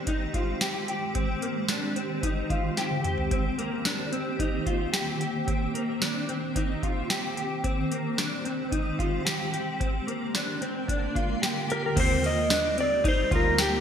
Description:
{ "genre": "dream pop", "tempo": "111 BPM", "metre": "4/4", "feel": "straight", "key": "Eb major", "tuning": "A4 = 439 Hz", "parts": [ { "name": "granular cloud pad", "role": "sustained chords", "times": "0.0-13.8 s", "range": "D3 to C5", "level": "-32 LUFS", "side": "right 2 dB", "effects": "built-in reverb, wide subtle chorus" }, { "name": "mellow electric guitar", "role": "arpeggios", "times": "0.0-13.8 s", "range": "Bb3 to G4", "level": "-30 LUFS", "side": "left 2 dB", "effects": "ensemble chorus, ping-pong delay" }, { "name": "booming analog drum machine", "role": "drums", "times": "0.1-13.7 s", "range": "crash cymbal, hi-hat, kick drum, ride cymbal, snare drum, tambourine, toms", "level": "-29 LUFS", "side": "equal", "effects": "overdrive, gated reverb" }, { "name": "clean lap steel guitar", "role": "melody", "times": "11.7-13.8 s", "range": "G4 to Eb5", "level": "-25 LUFS", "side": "right 1 dB", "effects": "lush chorus, ping-pong delay" }, { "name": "vintage muted picked electric bass", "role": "bass", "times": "12.0-13.8 s", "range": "D2 to Eb2", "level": "-31 LUFS", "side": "equal", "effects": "none" } ], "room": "wet lush hall reverb, RT60 1.9 s", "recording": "bright 1980s-style digital production", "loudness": "-25 LUFS", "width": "side -8 dB against mid", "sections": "0.0-12.0 A section; 12.0-13.8 B section", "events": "drum fill 2.8-3.3", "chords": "0.0 Abmaj7; 3.3 Eb6; 7.6 Abmaj7; 9.8 Bb7; 12.0 Eb6" }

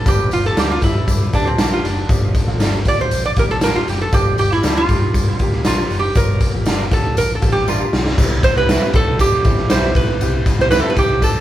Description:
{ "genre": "uptempo 1960s-style soul", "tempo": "118 BPM", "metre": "4/4", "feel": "straight", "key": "C major from 8.2 s", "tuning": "A4 = 441 Hz", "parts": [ { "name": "metal-body resonator slide guitar", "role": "melody", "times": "0.0-11.4 s", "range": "C4 to D5", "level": "-19 LUFS", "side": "right 2 dB", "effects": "tape echo" }, { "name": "warm upright piano", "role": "accompaniment", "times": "0.1-11.3 s", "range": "F3 to A4", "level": "-27 LUFS", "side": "left 2 dB", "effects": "none" }, { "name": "vintage muted fingered electric bass", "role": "bass", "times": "0.1-11.4 s", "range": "F#1 to G2", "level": "-22 LUFS", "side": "equal", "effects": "none" }, { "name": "raw garage drum kit", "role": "drums", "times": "0.1-11.3 s", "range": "crash cymbal, hi-hat, kick drum, ride cymbal, snare drum", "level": "-17 LUFS", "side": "equal", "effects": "none" }, { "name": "tambourine", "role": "percussion", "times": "0.1-11.3 s", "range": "none", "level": "-34 LUFS", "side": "left 4 dB", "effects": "none" }, { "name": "electric guitar through a small old amp", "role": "stabs", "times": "0.6-10.9 s", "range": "G3 to B4", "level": "-24 LUFS", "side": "right 1 dB", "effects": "none" } ], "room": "moderate large studio reverb, RT60 0.9 s", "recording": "band playing live in one room", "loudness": "-14 LUFS", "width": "side -13 dB against mid", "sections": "0.0-8.2 A section; 8.2-11.4 B section", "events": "resonator guitar played with a steel bar solo 0.0-8.2; drum fill 7.7-8.2", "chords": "0.1 Gm7; 8.2 Cmaj7" }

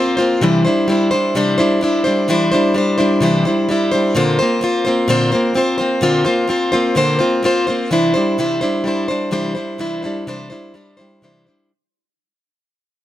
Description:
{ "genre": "rock", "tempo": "128 BPM", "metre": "4/4", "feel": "straight", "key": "C mixolydian", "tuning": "A4 = 444 Hz", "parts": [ { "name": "picked plugged-in steel-string acoustic guitar", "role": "solo", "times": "0.0-11.7 s", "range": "Bb2 to C5", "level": "-14 LUFS", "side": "equal", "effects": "none" } ], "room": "light reverb", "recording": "none", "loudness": "-14 LUFS", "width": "side -13 dB against mid", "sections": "0.0-7.9 A section; 7.9-11.7 B section", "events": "fade-out 7.9-11.7", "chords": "0.4 Cadd9; 4.2 Bbadd9; 7.9 Cadd9" }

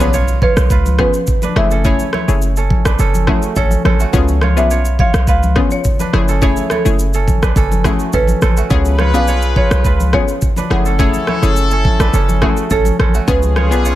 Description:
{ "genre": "afrobeats", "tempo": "105 BPM", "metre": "4/4", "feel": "straight", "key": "F# minor", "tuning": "A4 = 441 Hz", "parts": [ { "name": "marimba with medium mallets", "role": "melody", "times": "0.0-14.0 s", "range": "A4 to F#5", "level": "-21 LUFS", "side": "right 1 dB", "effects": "tape echo" }, { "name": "analog pluck", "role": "accompaniment", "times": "0.0-13.9 s", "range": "A3 to G#4", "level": "-20 LUFS", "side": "left 6 dB", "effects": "chorus" }, { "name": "kora", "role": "riff", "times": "0.0-14.0 s", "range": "A3 to C#5", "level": "-22 LUFS", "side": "right 8 dB", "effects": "none" }, { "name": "warm 808-style bass", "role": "bass", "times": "0.0-14.0 s", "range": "F#1 to C#2", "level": "-14 LUFS", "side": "equal", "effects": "none" }, { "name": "afro-pop drum kit", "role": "drums", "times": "0.0-14.0 s", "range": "kick drum, rim click, shaker", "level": "-17 LUFS", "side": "equal", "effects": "none" }, { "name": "impact and riser", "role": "sound effects", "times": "0.0-1.8, 13.8-14.0 s", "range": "none", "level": "-28 LUFS", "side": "equal", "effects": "none" }, { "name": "congas", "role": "percussion", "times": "0.4-13.7 s", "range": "none", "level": "-23 LUFS", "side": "left 4 dB", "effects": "none" }, { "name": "clear horn section", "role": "second line", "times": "8.7-14.0 s", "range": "C#4 to B4", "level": "-21 LUFS", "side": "left 3 dB", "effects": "none" } ], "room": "small room ambience", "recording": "none", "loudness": "-11 LUFS", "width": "side -14 dB against mid", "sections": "0.0-14.0 A section", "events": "impact 0.0-1.8", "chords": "0.0 C#7; 1.6 F#m9; 4.1 C#7; 6.1 F#m9; 8.7 C#7; 10.7 F#m9; 13.3 C#7" }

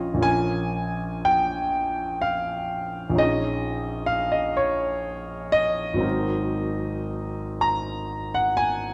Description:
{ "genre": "classical, impressionist solo piano", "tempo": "33-45 BPM (dotted quarters)", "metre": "6/8", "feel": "rubato", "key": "Bb minor", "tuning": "A4 = 439 Hz", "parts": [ { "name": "warm grand piano", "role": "solo", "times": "0.0-8.9 s", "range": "Ab1 to Bb5", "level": "-25 LUFS", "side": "equal", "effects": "none" } ], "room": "moderate recital hall reverb, RT60 1.5 s", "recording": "dark, warm production", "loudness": "-25 LUFS", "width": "mono", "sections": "0.2-8.9 A section", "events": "none", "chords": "0.0 Bbm; 3.2 Dbadd9/Bb; 6.0 Ab9" }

